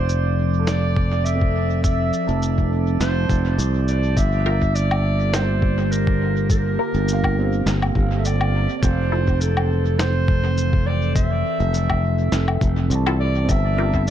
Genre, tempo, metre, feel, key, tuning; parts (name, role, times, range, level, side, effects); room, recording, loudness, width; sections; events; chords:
ambient dub; 103 BPM; 4/4; swing 54% on 16ths; G dorian; A4 = 440 Hz
mellow clarinet; melody; 0.0-14.1 s; A4 to E5; -26 LUFS; right 2 dB; dub echo
warbly tape-like pad; sustained chords; 0.0-14.1 s; D3 to A4; -28 LUFS; equal; chorus, built-in reverb
felt-muted upright piano; arpeggios; 0.0-14.1 s; C4 to A5; -33 LUFS; right 5 dB; dub echo
modern bright fingered electric bass; bass; 0.0-14.1 s; F1 to C2; -20 LUFS; equal
drifting glass-harmonics texture; texture; 0.0-4.2, 14.1 s; D5 to A5; -34 LUFS; right 9 dB; chorus, built-in reverb
electronic shaker, snare drum and woodblock; drums; 0.1-14.1 s; -29 LUFS; left 1 dB; dub echo
electronic kick drum; drums; 1.0-14.0 s; -20 LUFS; equal
filtered dub chord stab; stabs; 4.5-9.2, 13.1-13.9 s; E4 to Bb4; -30 LUFS; left 3 dB; phaser, dub echo
little or no reverb; echo-heavy mix; -17 LUFS; side -10 dB against mid
0.0-4.2 A section; 4.2-14.1 B section
0.0 Fmaj7; 4.2 Gm7; 8.8 Fmaj7; 13.5 Gm7